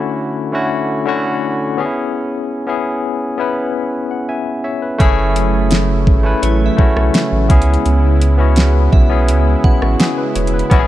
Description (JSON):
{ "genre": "contemporary R&B", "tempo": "84 BPM", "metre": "4/4", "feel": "straight", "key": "unclear", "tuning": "A4 = 439 Hz", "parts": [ { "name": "barky tine electric piano", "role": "accompaniment", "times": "0.0-10.9 s", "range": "D3 to G#5", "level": "-17 LUFS", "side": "left 3 dB", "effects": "medium stereo tremolo" }, { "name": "lush unison pad", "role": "sustained chords", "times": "5.0-10.9 s", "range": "C#3 to E4", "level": "-21 LUFS", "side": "right 3 dB", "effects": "chorus, phaser" }, { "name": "warm sub bass", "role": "bass", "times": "5.0-10.9 s", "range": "E1 to C#2", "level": "-14 LUFS", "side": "right 1 dB", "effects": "none" }, { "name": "smooth R&B drum kit", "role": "drums", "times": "5.0-10.9 s", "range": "hi-hat, kick drum, rim click, snare drum", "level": "-13 LUFS", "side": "right 1 dB", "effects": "none" }, { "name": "glassy synth bell", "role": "texture", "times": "5.0-10.3 s", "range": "C#5 to F#5", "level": "-30 LUFS", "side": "right 3 dB", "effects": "chorus, tape echo" } ], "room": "little or no reverb", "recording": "dark, warm production", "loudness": "-13 LUFS", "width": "side -14 dB against mid", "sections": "0.0-10.9 A section", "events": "tine electric piano fill 3.9-5.0", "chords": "0.0 Dmaj7; 1.8 C#m7; 5.0 F#m7; 7.5 C#m7" }